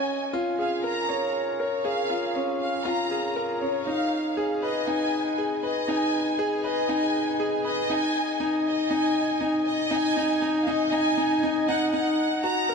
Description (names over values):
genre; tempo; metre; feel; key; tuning
electronica; 119 BPM; 4/4; straight; unclear; A4 = 440 Hz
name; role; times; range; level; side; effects
dark studio violin section; melody; 0.0-12.7 s; Db5 to Bb5; -28 LUFS; equal; low-pass filter
bright grand piano; riff; 0.0-12.7 s; Db4 to Db5; -25 LUFS; left 1 dB; none
room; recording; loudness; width
wet huge ambient reverb, RT60 4.2 s; none; -23 LUFS; side -5 dB against mid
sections
0.0-11.9 A section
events
build-up 0.0-11.9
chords
0.0 Db6; 3.9 Abm; 7.9 N.C.; 11.9 Ebm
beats
0.34 0.84 1.35 | 1.85 2.35 2.86 3.36 | 3.87 4.37 4.88 5.38 | 5.88 6.39 6.89 7.40 | 7.90 8.40 8.91 9.41 | 9.92 10.42 10.93 11.43 | 11.93 12.44